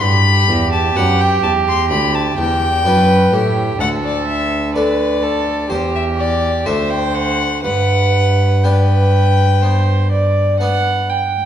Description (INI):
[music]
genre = classical, baroque-style sonata movement with continuo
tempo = 63 BPM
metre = 4/4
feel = straight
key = G major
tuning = A4 = 439 Hz
[part]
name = rich violin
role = melody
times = 0.0-10.6 s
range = C5 to C6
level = -18 LUFS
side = left 5 dB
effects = none
[part]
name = warm violin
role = second line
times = 0.0-11.5 s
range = G4 to G5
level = -19 LUFS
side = right 5 dB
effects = none
[part]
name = harpsichord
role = accompaniment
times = 0.0-11.3 s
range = D2 to C5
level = -23 LUFS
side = left 2 dB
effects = none
[part]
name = rich cello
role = bass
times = 0.0-11.4 s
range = D2 to A2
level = -16 LUFS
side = right 1 dB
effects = none
[sound]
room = wet recital hall reverb, RT60 1.6 s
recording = minimal, uncompressed stereo recording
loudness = -13 LUFS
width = side -10 dB against mid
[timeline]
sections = 0.0-11.5 A section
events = none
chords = 0.0 G; 3.8 D5; 5.7 C/E; 6.7 D7; 7.6 G